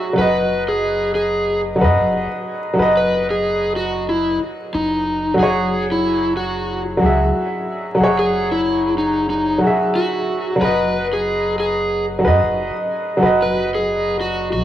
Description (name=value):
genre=trip hop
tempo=92 BPM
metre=4/4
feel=swing 58% on 16ths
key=unclear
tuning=A4 = 439 Hz
part: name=overdriven slide guitar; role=melody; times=0.0-14.6 s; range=D#4 to B4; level=-20 LUFS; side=equal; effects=vintage 12-bit sampler grit, cassette tape, dub echo
part: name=bright upright piano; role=accompaniment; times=0.0-14.6 s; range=F#3 to E5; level=-18 LUFS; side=equal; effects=harmonic tremolo, cassette tape, tape echo
part: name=soft dub sub bass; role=bass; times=0.2-14.6 s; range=F#1 to F#2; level=-26 LUFS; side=equal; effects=none
room=light reverb, small room ambience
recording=home recording on cassette, vinyl crackle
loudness=-16 LUFS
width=side -12 dB against mid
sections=0.0-14.6 A section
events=none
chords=0.2 F#sus4; 5.4 F#sus2; 10.6 B6/F#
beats=| 0.16 0.82 1.47 2.12 | 2.77 3.42 4.08 4.73 | 5.38 6.03 6.68 7.34 | 7.99 8.64 9.29 9.95 | 10.60 11.25 11.90 12.55 | 13.21 13.86 14.51